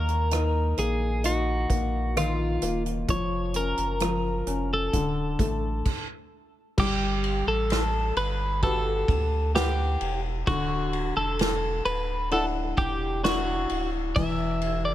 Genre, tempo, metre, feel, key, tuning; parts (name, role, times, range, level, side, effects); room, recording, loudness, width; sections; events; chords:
pop ballad; 65 BPM; 4/4; straight; G major from 6.8 s; A4 = 440 Hz
twelve-string electric guitar; melody; 0.0-14.9 s; E#4 to E5; -28 LUFS; equal
warm baby grand piano; accompaniment; 0.0-14.9 s; D3 to F#5; -30 LUFS; left 3 dB
warm sub bass; bass; 0.0-14.9 s; D1 to D#2; -29 LUFS; right 1 dB
unplugged drum kit; drums; 0.1-14.8 s; crash cymbal, hi-hat, kick drum, ride cymbal, rim click, snare drum; -30 LUFS; equal
studio reverb; -24 LUFS; side -13 dB against mid
0.0-6.8 A section; 6.8-14.9 B section
stop 5.9-6.8
0.0 D#m; 3.1 A#m/E#; 4.9 D5; 6.8 Gmaj7; 10.5 Dadd9; 14.2 N.C.